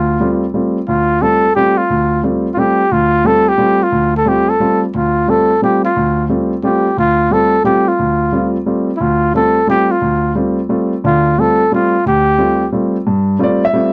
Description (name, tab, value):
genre	jazz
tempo	177 BPM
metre	3/4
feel	swing 65% on 8ths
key	unclear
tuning	A4 = 440 Hz
part	breathy trumpet	melody	0.0-12.7 s	E4 to A4	-16 LUFS	equal	none
part	clear grand piano	accompaniment	0.0-13.9 s	D2 to E5	-17 LUFS	equal	none
room	light reverb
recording	dry, close 1970s-style studio recording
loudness	-14 LUFS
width	mono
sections	0.0-13.1 A section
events	none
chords	0.0 G9sus4